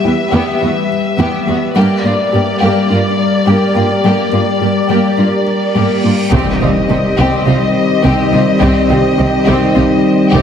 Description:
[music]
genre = cinematic, hybrid orchestral and electronic film score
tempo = 105 BPM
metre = 4/4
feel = straight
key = C minor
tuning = A4 = 440 Hz
[part]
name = warm symphonic violin section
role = melody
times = 0.0-10.4 s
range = D5 to E5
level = -20 LUFS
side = left 4 dB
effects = none
[part]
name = warm symphonic violin section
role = second line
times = 0.0-10.4 s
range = F4 to G4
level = -22 LUFS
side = left 3 dB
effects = none
[part]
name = rich symphonic viola section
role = accompaniment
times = 0.0-10.4 s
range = Bb3 to C4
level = -21 LUFS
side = equal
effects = none
[part]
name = glassy FM pad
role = sustained chords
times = 0.0-10.4 s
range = G3 to E5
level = -16 LUFS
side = left 1 dB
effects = ensemble chorus, built-in reverb
[part]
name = soft round pluck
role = arpeggios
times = 0.0-10.4 s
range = C3 to G4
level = -22 LUFS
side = left 4 dB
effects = none
[part]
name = warm symphonic cello section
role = bass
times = 0.0-10.4 s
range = E2 to C3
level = -17 LUFS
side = right 2 dB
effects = none
[part]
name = felt-muted upright piano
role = texture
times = 0.0-10.4 s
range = G4 to G5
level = -26 LUFS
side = left 2 dB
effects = none
[part]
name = reverse cymbal and impact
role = sound effects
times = 5.8-8.6 s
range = none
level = -22 LUFS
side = equal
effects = none
[part]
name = mellow French horn section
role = sustained chords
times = 6.3-10.4 s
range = C4 to Eb4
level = -18 LUFS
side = left 2 dB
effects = none
[part]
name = warm trombone section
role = sustained chords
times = 6.3-10.4 s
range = Eb3 to G3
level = -19 LUFS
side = right 3 dB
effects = none
[part]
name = rich symphonic double bass section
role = bass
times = 6.3-10.4 s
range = C2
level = -18 LUFS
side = right 2 dB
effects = none
[part]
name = taiko ensemble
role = drums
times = 6.3-9.1 s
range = none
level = -20 LUFS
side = equal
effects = none
[sound]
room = wet scoring stage reverb, RT60 1.6 s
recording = heavily compressed radio sound, multiband compression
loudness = -10 LUFS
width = side -8 dB against mid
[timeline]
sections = 0.0-6.3 A section; 6.3-10.4 A section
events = reverse cymbal 5.8-6.3; impact 6.3-8.6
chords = 0.0 Em; 1.8 Gm; 6.3 Cm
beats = 0.04 0.61 1.19 | 1.76 2.33 2.90 3.47 | 4.04 4.62 5.19 5.76 | 6.33 6.90 7.47 8.04 | 8.62 9.19 9.76 10.33

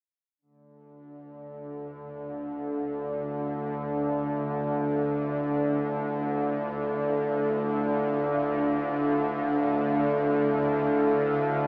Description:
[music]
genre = dark ambient drone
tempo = free time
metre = none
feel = none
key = D minor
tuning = A4 = 436 Hz
[part]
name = deep dark ambient pad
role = sustained chords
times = 1.8-11.7 s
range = D4 to F5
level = -34 LUFS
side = equal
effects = chorus, built-in reverb, shimmer reverb
[part]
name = bowed-like drone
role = drone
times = 1.1-11.7 s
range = D2 to D3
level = -29 LUFS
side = equal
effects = built-in reverb
[sound]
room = wet cathedral reverb, RT60 5.9 s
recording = small speaker sound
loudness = -27 LUFS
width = mono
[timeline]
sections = 0.4-11.7 A section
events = fade-in on ambient pad 0.4-11.7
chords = 0.4 Dmadd9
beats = free time

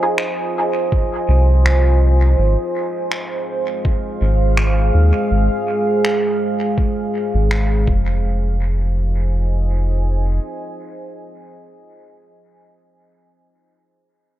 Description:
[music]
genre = ambient dub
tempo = 82 BPM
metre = 4/4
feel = swing 56% on 16ths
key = F minor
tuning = A4 = 440 Hz
[part]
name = deep dark ambient pad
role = sustained chords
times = 0.0-11.9 s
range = Ab3 to Ab5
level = -21 LUFS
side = right 1 dB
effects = chorus, built-in reverb
[part]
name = finger snaps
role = drums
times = 0.2-7.7 s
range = none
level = -26 LUFS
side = equal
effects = dub echo
[part]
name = electronic kick drum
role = drums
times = 0.9-8.0 s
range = none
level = -19 LUFS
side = equal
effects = none
[part]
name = round analog bass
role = bass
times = 1.3-10.4 s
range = F1 to Eb2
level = -15 LUFS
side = equal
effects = none
[sound]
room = small room ambience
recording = none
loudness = -15 LUFS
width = side -13 dB against mid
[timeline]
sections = 0.0-8.2 A section; 8.2-11.2 B section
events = none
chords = 0.0 Fm7; 2.4 Ab6; 7.9 F5; 8.2 Fm7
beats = 0.19 0.92 1.65 | 2.38 3.12 3.85 4.58 | 5.31 6.04 6.77 7.51 | 8.24 8.97 9.70 10.43

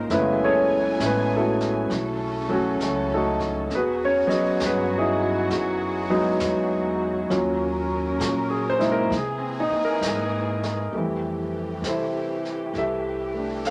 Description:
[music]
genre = jazz ballad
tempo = 66 BPM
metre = 4/4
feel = swing 66% on 8ths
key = unclear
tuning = A4 = 440 Hz
[part]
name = warm concert grand piano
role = accompaniment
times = 0.0-13.7 s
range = E3 to F5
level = -25 LUFS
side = equal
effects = none
[part]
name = dark studio string section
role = sustained chords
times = 0.0-13.7 s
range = Db3 to Ab5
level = -34 LUFS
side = equal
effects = none
[part]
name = upright bass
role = bass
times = 0.0-13.7 s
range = Gb1 to C3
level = -35 LUFS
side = equal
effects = none
[part]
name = jazz brush drum kit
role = drums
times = 0.1-13.7 s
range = brushed snare drum, hi-hat, kick drum, snare drum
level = -38 LUFS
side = equal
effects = none
[sound]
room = moderate studio reverb, RT60 0.5 s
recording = none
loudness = -24 LUFS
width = mono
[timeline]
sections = 0.0-10.9 A section; 10.9-13.7 B section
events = none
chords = 0.1 Gbm9; 1.9 Cb9; 3.7 Emaj9; 7.3 Ebm7; 9.1 Caug7; 10.9 Fmaj9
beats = | 0.10 1.00 1.90 2.80 | 3.70 4.60 5.50 6.40 | 7.30 8.21 9.11 10.02 | 10.93 11.84 12.74 13.65

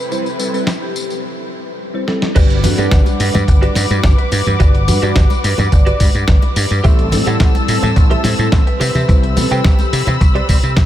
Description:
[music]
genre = nu-disco, nu disco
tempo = 107 BPM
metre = 4/4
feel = straight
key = G major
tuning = A4 = 440 Hz
[part]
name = vibraphone with medium hard mallets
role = melody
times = 0.0-10.0 s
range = G4 to D5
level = -28 LUFS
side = equal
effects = ping-pong delay
[part]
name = muted studio string section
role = sustained chords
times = 0.0-10.9 s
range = C3 to E6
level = -24 LUFS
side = left 2 dB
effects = sidechain pumping
[part]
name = bell-like tine electric piano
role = accompaniment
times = 0.1-9.7 s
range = G3 to F#5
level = -22 LUFS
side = equal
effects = analog chorus, sidechain pumping, diffuse ambient delay
[part]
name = dusty soul sampler-style drum kit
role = drums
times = 0.1-10.9 s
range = crash cymbal, hi-hat, snare drum, tambourine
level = -22 LUFS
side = equal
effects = none
[part]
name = direct-recorded clean electric guitar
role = riff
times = 2.4-10.8 s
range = F#4 to G5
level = -25 LUFS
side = right 3 dB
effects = ensemble chorus, vintage 12-bit sampler grit, diffuse ambient delay
[part]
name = dry thumbed slap bass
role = bass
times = 2.4-10.9 s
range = G1 to C3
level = -16 LUFS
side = equal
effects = sidechain pumping
[part]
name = electronic kick drum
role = drums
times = 2.4-10.9 s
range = none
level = -12 LUFS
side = equal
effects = none
[part]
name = congas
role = percussion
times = 2.6-10.6 s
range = none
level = -25 LUFS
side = left 1 dB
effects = none
[sound]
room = light reverb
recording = none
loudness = -11 LUFS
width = side -12 dB against mid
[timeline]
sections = 0.0-2.4 A section; 2.4-10.9 B section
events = break 1.2-2.4; drum fill 2.1; drop 2.4-10.9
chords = 0.0 Cmaj7; 2.4 Gmaj7; 6.8 Am7; 8.8 Cmaj7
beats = | 0.11 0.68 1.24 1.80 | 2.36 2.92 3.48 4.04 | 4.60 5.16 5.72 6.28 | 6.84 7.40 7.96 8.53 | 9.09 9.65 10.21 10.77

